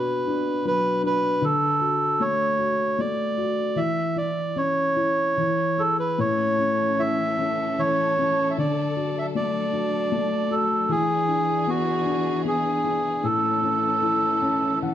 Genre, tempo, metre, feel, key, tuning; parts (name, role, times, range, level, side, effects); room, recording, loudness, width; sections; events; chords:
children's music, lullaby; 77 BPM; 3/4; rubato; A major; A4 = 440 Hz
melodica; melody; 0.0-14.8 s; F#4 to E5; -23 LUFS; right 2 dB
felt-muted upright piano; accompaniment; 0.0-14.9 s; A2 to A5; -26 LUFS; left 4 dB
warm studio string section; sustained chords; 6.2-14.9 s; E3 to A4; -32 LUFS; right 2 dB
moderate recital hall reverb, RT60 1.4 s; dark, warm production; -21 LUFS; side -11 dB against mid
0.0-14.9 A section
felt piano fill 14.0-14.9
0.0 Bm; 1.4 D; 3.8 C#m/E; 5.4 E; 6.2 A; 8.6 D; 10.9 E7; 13.2 A